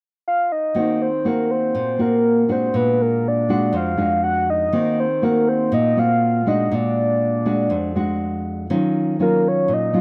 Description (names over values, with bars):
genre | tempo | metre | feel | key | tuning
bossa nova | 121 BPM | 4/4 | straight | Eb dorian | A4 = 440 Hz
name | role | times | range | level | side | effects
soft octave-layered synth lead | melody | 0.3-10.0 s | Bb4 to Gb5 | -22 LUFS | equal | chorus
nylon-string guitar | accompaniment | 0.7-10.0 s | F2 to Gb4 | -22 LUFS | equal | none
room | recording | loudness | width
little or no reverb | dry, close 1970s-style studio recording | -19 LUFS | mono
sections
0.7-8.7 A section; 8.7-10.0 B section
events
none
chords
0.0 N.C.; 0.7 Ebm6; 2.7 Bb7b13; 4.7 Ebm6; 6.7 Bb7b13; 8.7 Ebm9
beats
0.25 | 0.75 1.25 1.74 2.24 | 2.73 3.23 3.73 4.22 | 4.72 5.22 5.71 6.21 | 6.71 7.21 7.70 8.20 | 8.70 9.19 9.69